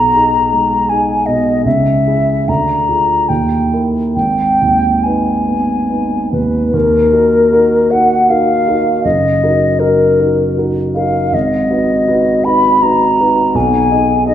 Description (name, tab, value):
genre	classical, romantic duo for flute and grand piano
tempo	67-83 BPM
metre	3/4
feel	rubato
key	G# minor, Eb minor from 6.7 s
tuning	A4 = 440 Hz
part	mellow hollow concert flute	melody	0.0-14.3 s	Bb4 to Cb6	-13 LUFS	left 2 dB	none
part	warm grand piano	accompaniment	0.0-14.3 s	Gb1 to Eb5	-14 LUFS	right 2 dB	none
room	wet recital hall reverb, RT60 1.6 s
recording	recorded in a church or concert hall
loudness	-10 LUFS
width	side -10 dB against mid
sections	0.0-6.7 A section; 6.7-14.3 B section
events	none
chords	0.0 G#m/B; 1.7 C#m; 2.5 A#7/D; 3.3 D#; 4.2 G#m; 6.7 Ebm; 9.0 Ebm/Gb; 11.3 Abm7; 13.6 Abm/Cb